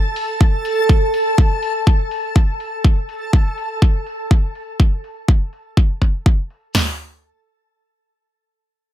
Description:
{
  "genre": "progressive house",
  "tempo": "123 BPM",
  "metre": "4/4",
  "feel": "straight",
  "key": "unclear",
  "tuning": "A4 = 440 Hz",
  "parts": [
    { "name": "backwards swelling texture", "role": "texture", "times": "0.0-2.9 s", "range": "A4 to A5", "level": "-22 LUFS", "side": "equal", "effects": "built-in reverb, sidechain pumping" },
    { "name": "electronic hi-hat", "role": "drums", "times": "0.2-6.6 s", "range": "none", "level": "-40 LUFS", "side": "left 2 dB", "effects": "sidechain pumping on hats, low-pass filter on hats, low-pass filter on snare, low-pass filter on room" },
    { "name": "deep house drum kit", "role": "drums", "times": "0.4-6.9 s", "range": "hi-hat, kick drum, snare drum, toms", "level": "-13 LUFS", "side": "equal", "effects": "none" }
  ],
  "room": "little or no reverb",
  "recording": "none",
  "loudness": "-15 LUFS",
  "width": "side -12 dB against mid",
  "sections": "0.0-6.7 A section; 6.7-8.9 B section",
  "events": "none",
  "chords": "none"
}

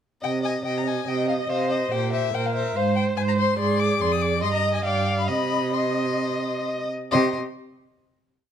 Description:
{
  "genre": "quick classical-period movement for string quartet",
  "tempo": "130-145 BPM",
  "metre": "4/4",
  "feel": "rubato",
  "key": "C minor",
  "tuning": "A4 = 439 Hz",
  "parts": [
    { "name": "warm violin", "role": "melody", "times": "0.2-7.4 s", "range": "Eb5 to Eb6", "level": "-28 LUFS", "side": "left 9 dB", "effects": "none" },
    { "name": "warm violin", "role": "second line", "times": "0.2-7.4 s", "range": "C5 to F5", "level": "-29 LUFS", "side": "left 4 dB", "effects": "none" },
    { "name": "warm cello", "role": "bass", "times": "0.2-7.4 s", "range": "F2 to C3", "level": "-25 LUFS", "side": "right 4 dB", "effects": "none" },
    { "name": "warm viola", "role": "accompaniment", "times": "1.1-7.4 s", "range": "G4 to Eb5", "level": "-27 LUFS", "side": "right 2 dB", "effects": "none" }
  ],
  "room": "light reverb",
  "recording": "none",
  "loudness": "-21 LUFS",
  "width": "side -8 dB against mid",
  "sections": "0.2-7.1 theme; 7.1-8.5 final chord",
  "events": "slowing down 2.8-7.1",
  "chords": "0.2 Cm; 1.9 C5/Bb; 2.8 Ab6; 3.6 Ddim/Ab; 4.4 Abmaj9/G; 4.8 G5; 5.3 Cm; 7.1 C5"
}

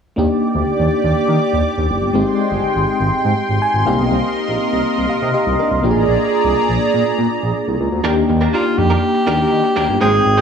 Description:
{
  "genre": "pop",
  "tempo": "122 BPM",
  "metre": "4/4",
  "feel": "straight",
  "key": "Eb major",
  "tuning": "A4 = 440 Hz",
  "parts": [
    { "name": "FM electric piano with auto-pan", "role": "accompaniment", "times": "0.2-10.4 s", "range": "Ab3 to Ab5", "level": "-18 LUFS", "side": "left 2 dB", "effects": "none" },
    { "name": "lush unison pad", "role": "sustained chords", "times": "0.2-8.0 s", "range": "Ab3 to D6", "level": "-19 LUFS", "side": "right 2 dB", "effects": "chorus, phaser" },
    { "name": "smooth synth bass", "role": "bass", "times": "0.2-10.4 s", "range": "Gb1 to Eb3", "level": "-19 LUFS", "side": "right 1 dB", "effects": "none" },
    { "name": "direct-recorded clean electric guitar", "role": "riff", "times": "8.0-10.4 s", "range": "Ab3 to C5", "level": "-22 LUFS", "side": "right 5 dB", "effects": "ensemble chorus, tape echo" },
    { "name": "breathy alto saxophone", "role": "melody", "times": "8.5-10.4 s", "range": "F4 to Ab4", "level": "-16 LUFS", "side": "equal", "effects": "tape echo" }
  ],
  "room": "moderate lush hall reverb, RT60 2.5 s",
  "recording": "studio ambience",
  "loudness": "-14 LUFS",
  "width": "side -7 dB against mid",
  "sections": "0.2-8.0 A section; 8.0-10.4 B section",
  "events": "FM electric piano fill 3.4-4.1",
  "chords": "0.2 Ebmaj7; 2.1 Abmaj7; 3.9 Cm7; 5.8 Bb7; 8.0 Ebmaj7"
}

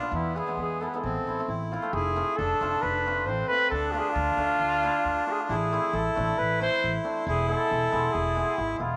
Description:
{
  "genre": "klezmer",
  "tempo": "135 BPM",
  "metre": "4/4",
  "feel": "straight",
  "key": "A harmonic minor",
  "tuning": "A4 = 439 Hz",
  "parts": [
    { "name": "mellow cornet", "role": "melody", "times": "0.0-9.0 s", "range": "E4 to C5", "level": "-30 LUFS", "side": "equal", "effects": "none" },
    { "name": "accordion", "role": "second line", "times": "0.0-8.8 s", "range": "B3 to E4", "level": "-32 LUFS", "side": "equal", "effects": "none" },
    { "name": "cimbalom", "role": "accompaniment", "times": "0.0-9.0 s", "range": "G#3 to F4", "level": "-36 LUFS", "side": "equal", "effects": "none" },
    { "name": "upright bass", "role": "bass", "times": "0.1-9.0 s", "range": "E1 to E2", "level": "-35 LUFS", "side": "equal", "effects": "none" }
  ],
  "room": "wet echo chamber reverb, RT60 2.4 s",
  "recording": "none",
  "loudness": "-27 LUFS",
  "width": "mono",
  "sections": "0.0-1.9 A section; 1.9-9.0 B section",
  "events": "speeding up 0.0-9.0",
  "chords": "0.1 E; 1.0 Am; 1.9 F; 3.7 Dm; 5.5 Am; 7.3 E"
}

